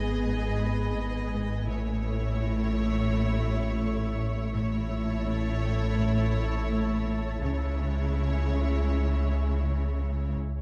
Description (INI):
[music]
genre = cinematic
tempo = 83 BPM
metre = 4/4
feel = straight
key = unclear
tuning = A4 = 440 Hz
[part]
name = rich symphonic violin section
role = melody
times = 0.0-10.3 s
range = C#5 to D#5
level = -43 LUFS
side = equal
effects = none
[part]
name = warm symphonic viola section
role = accompaniment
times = 0.0-10.3 s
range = G#3 to G#4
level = -37 LUFS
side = equal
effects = none
[part]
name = flickering grainy texture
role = sustained chords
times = 0.0-10.4 s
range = G#4 to C#6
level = -42 LUFS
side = equal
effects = built-in reverb
[part]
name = rich symphonic cello section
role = riff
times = 0.0-10.2 s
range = G#2 to C#4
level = -38 LUFS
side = equal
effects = none
[part]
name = rich chamber double bass section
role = bass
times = 0.0-10.3 s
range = G#1 to C#2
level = -36 LUFS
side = equal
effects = none
[part]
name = warm symphonic cello section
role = bass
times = 0.0-10.3 s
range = G#2 to C#3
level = -35 LUFS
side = equal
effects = none
[part]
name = warm sub bass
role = drone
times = 0.0-10.6 s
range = G#1 to C#2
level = -33 LUFS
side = equal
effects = none
[part]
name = concert harp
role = texture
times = 0.0-10.6 s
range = G#4 to B5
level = -50 LUFS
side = equal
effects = none
[sound]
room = light reverb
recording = none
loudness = -28 LUFS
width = mono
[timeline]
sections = 0.0-10.6 A section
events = break 10.4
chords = 0.0 G#m; 1.7 A; 7.4 C#m